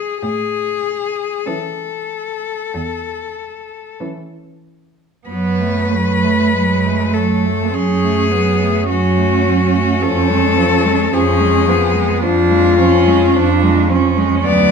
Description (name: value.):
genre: classical, lyrical piece for cello ensemble.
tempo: 46-56 BPM.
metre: 4/4.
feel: rubato.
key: A major, F# minor from 5.3 s.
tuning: A4 = 439 Hz.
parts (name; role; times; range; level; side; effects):
rich cello; melody; 0.0-14.7 s; E#4 to D5; -17 LUFS; left 8 dB; none.
rich cello; bass; 0.2-14.7 s; D2 to A2; -20 LUFS; right 2 dB; none.
clear cello; second line; 1.5-14.7 s; G#3 to D4; -18 LUFS; right 8 dB; none.
clear cello; accompaniment; 1.5-14.7 s; E3 to A3; -19 LUFS; right 1 dB; none.
room: moderate recital hall reverb, RT60 1.2 s.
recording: none.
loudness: -13 LUFS.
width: side -6 dB against mid.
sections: 0.0-5.3 A section; 5.3-14.7 B section.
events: none.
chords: 0.2 A; 5.3 F#m; 10.0 C#(b9b13)/E#.